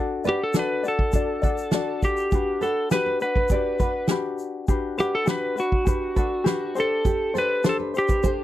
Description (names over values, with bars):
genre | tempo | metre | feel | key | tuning
acoustic pop | 101 BPM | 4/4 | straight | G major | A4 = 440 Hz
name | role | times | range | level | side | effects
ukulele | accompaniment | 0.0-8.4 s | D4 to D5 | -27 LUFS | left 5 dB | none
natural country drum kit | drums | 0.2-8.4 s | kick drum, shaker, snare drum | -24 LUFS | right 1 dB | none
clean lap steel guitar | melody | 0.3-8.4 s | F#4 to B4 | -24 LUFS | equal | none
nylon-string guitar | arpeggios | 0.3-8.4 s | G4 to D5 | -32 LUFS | right 8 dB | none
room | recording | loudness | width
little or no reverb | dry, close 1970s-style studio recording | -21 LUFS | side -13 dB against mid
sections
0.0-8.4 A section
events
none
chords
0.0 D; 2.3 Gmaj7; 6.8 D7sus4